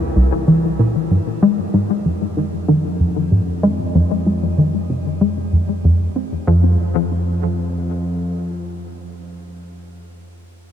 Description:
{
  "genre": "ambient, sequencer-driven space music",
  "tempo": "95 BPM",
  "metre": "4/4",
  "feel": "straight",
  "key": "F minor",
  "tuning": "A4 = 440 Hz",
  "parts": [
    { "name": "analog drone", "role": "bass", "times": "0.0-8.3 s", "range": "C2 to F2", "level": "-24 LUFS", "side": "equal", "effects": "chorus" },
    { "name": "plucky analog bass", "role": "riff", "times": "0.2-6.8 s", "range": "C2 to C4", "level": "-16 LUFS", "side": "left 1 dB", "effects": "analog chorus, ping-pong delay" }
  ],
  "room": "moderate huge ambient reverb, RT60 9.3 s",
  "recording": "dark, warm production",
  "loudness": "-15 LUFS",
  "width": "side -9 dB against mid",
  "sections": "0.0-6.5 A section; 6.5-9.0 B section",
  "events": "none",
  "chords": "0.0 C; 1.4 Fm; 6.5 N.C."
}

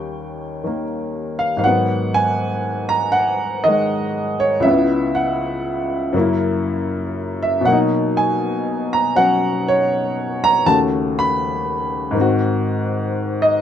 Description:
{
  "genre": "solo jazz",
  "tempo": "80 BPM",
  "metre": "4/4",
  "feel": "swing 69% on 8ths",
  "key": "G# minor",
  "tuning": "A4 = 440 Hz",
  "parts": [
    { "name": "warm upright piano", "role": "solo", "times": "0.0-13.6 s", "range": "C#2 to B5", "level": "-16 LUFS", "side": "equal", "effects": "none" }
  ],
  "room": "moderate studio ambience, RT60 0.5 s",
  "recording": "minimal, uncompressed stereo recording",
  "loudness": "-16 LUFS",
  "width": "side -9 dB against mid",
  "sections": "0.0-1.6 A section; 1.6-13.6 B section",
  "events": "none",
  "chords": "0.0 Eb7; 1.6 G#m7; 4.6 C#m7; 6.1 F#7; 7.6 Bmaj7; 10.6 D#m7b5; 12.2 G#7"
}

